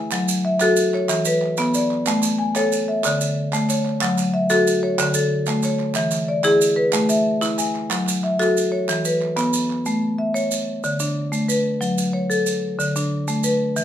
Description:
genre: southern african traditional, mbira-style interlocking cycle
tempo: 123 BPM (dotted quarters)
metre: 12/8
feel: straight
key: A major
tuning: A4 = 438 Hz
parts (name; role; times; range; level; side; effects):
- marimba with medium hard mallets; arpeggios; 0.0-13.8 s; D3 to G#5; -18 LUFS; left 1 dB; none
- group handclap; percussion; 0.1-9.8 s; none; -29 LUFS; right 7 dB; none
- maracas; percussion; 0.1-13.8 s; none; -28 LUFS; right 6 dB; none
room: moderate studio reverb, RT60 0.6 s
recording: minimal, uncompressed stereo recording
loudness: -18 LUFS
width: side -10 dB against mid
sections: 0.0-9.9 A section; 9.9-13.8 A section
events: none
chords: 0.1 F#m; 1.1 E5; 2.1 A; 3.0 D5; 4.0 F#m; 5.0 D5; 6.0 E; 6.9 A5; 7.9 F#m; 8.9 E5; 9.9 A; 10.8 D5; 11.8 F#m; 12.8 D5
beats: | 0.12 0.60 1.09 1.58 | 2.06 2.55 3.04 3.53 | 4.01 4.50 4.99 5.47 | 5.96 6.45 6.93 7.42 | 7.91 8.40 8.88 9.37 | 9.86 10.35 10.83 11.32 | 11.81 12.30 12.79 13.28 | 13.76

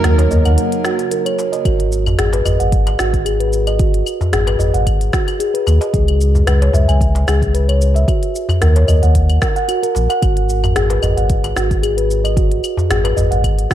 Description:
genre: organic downtempo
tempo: 112 BPM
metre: 4/4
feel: swing 54% on 16ths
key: G# minor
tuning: A4 = 436 Hz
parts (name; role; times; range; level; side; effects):
- rich kamancheh; melody; 0.0-0.5 s; A#4; -26 LUFS; right 4 dB; ping-pong delay
- warm analog pad; sustained chords; 0.0-1.6 s; C#3 to D#4; -22 LUFS; equal; chorus, sidechain pumping
- steel tongue drum; arpeggios; 0.0-13.7 s; F#4 to G#5; -18 LUFS; equal; low-pass filter, tape echo
- warm sub bass; bass; 0.0-13.7 s; G#1 to D#2; -15 LUFS; equal; sidechain pumping
- organic electronic drum kit; drums; 0.0-13.7 s; claves, hi-hat, shaker, snare drum; -24 LUFS; left 1 dB; none
- darbuka; percussion; 0.0-13.4 s; none; -21 LUFS; left 1 dB; none
- electronic kick drum; drums; 1.7-13.7 s; none; -17 LUFS; equal; none
room: light reverb, small room reverb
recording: dark, warm production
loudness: -13 LUFS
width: side -12 dB against mid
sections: 0.0-1.7 A section; 1.7-13.7 A section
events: break 0.6-1.7; filter sweep on steel tongue drum 1.7-13.7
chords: 0.0 D#m7; 1.7 G#7(no3); 5.9 C#7(no3); 8.1 D#m; 10.2 G#7(no3)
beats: 0.04 0.58 1.12 | 1.65 2.19 2.72 3.26 | 3.79 4.33 4.87 5.40 | 5.94 6.47 7.01 7.54 | 8.08 8.62 9.15 9.69 | 10.22 10.76 11.29 11.83 | 12.37 12.90 13.44

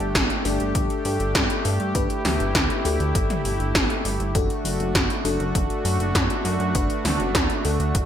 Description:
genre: synthwave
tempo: 100 BPM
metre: 4/4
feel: straight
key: G major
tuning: A4 = 439 Hz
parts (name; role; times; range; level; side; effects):
- warm analog pad; sustained chords; 0.0-8.1 s; A3 to G4; -27 LUFS; right 1 dB; chorus, sidechain pumping
- FM electric piano with soft pad layer; stabs; 0.0-8.1 s; D4 to B4; -30 LUFS; left 6 dB; chorus, cassette tape, ping-pong delay
- chorused synth bass; bass; 0.0-8.1 s; F#1 to G2; -25 LUFS; equal; none
- 80s electronic pad drums; drums; 0.0-8.1 s; hi-hat, snare drum, toms; -24 LUFS; equal; gated reverb on snare and toms, gated reverb
- electronic kick drum; drums; 0.1-8.1 s; none; -26 LUFS; equal; none
room: moderate plate reverb, RT60 1.6 s, digital ambience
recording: bright 1980s-style digital production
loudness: -20 LUFS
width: side -9 dB against mid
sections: 0.0-8.1 A section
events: none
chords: 0.0 Gsus2; 4.3 D/F#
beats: 0.15 0.75 1.35 | 1.95 2.55 3.15 3.75 | 4.35 4.95 5.55 6.15 | 6.75 7.35 7.95

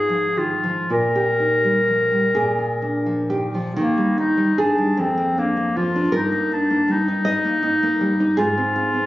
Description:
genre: romantic duo for clarinet and classical guitar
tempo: 37-54 BPM (dotted quarters)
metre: 6/8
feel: rubato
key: Eb major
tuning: A4 = 440 Hz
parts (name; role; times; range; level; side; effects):
- clear clarinet; melody; 0.0-9.1 s; Bb3 to Bb4; -20 LUFS; left 1 dB; slapback echo
- nylon-string guitar; accompaniment; 0.0-9.1 s; F2 to Eb5; -21 LUFS; right 1 dB; none
room: light reverb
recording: recorded on a phone in the room, club reverb, compression, nothing above 7.5 kHz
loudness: -17 LUFS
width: side -16 dB against mid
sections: 0.0-3.8 A section; 3.8-9.1 B section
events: none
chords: 0.0 Fm7/Ab; 0.9 Eb/Bb; 2.4 Bb; 3.8 Eb; 5.0 Bb7/F; 6.1 Eb/G; 8.4 Fm/Ab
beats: | 0.92 2.37 | 3.79 4.99 | 6.14 7.27 | 8.39

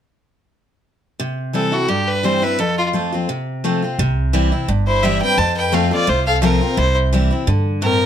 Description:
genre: bluegrass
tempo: 172 BPM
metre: 4/4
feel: swing 53% on 8ths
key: C major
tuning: A4 = 439 Hz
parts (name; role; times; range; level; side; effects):
- picked steel-string acoustic guitar; accompaniment; 1.2-8.1 s; F2 to F4; -20 LUFS; left 1 dB; none
- bright fiddle; melody; 1.5-8.1 s; F4 to A5; -19 LUFS; right 1 dB; slapback echo
- upright bass; bass; 4.0-8.0 s; G1 to G2; -19 LUFS; right 1 dB; none
- rich fiddle; second line; 4.9-8.1 s; C4 to C5; -23 LUFS; left 7 dB; none
room: light reverb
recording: close, detailed microphones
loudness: -15 LUFS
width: side -9 dB against mid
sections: 1.2-4.0 A section; 4.0-8.1 B section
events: none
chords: 1.2 C; 2.6 F; 4.0 C; 5.4 F; 6.8 C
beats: | 1.20 1.55 1.89 2.24 | 2.59 2.94 3.29 3.64 | 3.99 4.34 4.68 5.03 | 5.38 5.73 6.08 6.43 | 6.78 7.12 7.47 7.82

